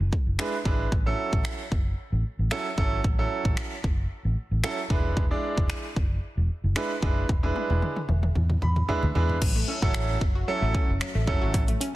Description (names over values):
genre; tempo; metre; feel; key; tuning
dance-pop; 113 BPM; 4/4; straight; A major; A4 = 441 Hz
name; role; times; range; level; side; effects
vintage muted fingered electric bass; bass; 0.0-11.7 s; E1 to E2; -26 LUFS; equal; sidechain pumping
pop drum kit; drums; 0.1-11.9 s; crash cymbal, finger snaps, hi-hat, kick drum, toms; -27 LUFS; equal; soft clipping on snare
clear concert grand piano; accompaniment; 0.4-11.6 s; F#3 to B5; -30 LUFS; right 3 dB; sidechain pumping
glassy wavetable pluck; arpeggios; 9.4-11.9 s; F#3 to F#4; -34 LUFS; left 2 dB; chorus, sidechain pumping, digital delay
room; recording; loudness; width
digital ambience; dense, heavily limited modern master, lossy compression artefacts; -23 LUFS; side -16 dB against mid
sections
0.0-9.4 A section; 9.4-12.0 B section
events
drum fill 7.3-9.4; grand piano fill 8.4-9.4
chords
0.0 E7; 0.9 A6; 4.9 E7; 9.4 A6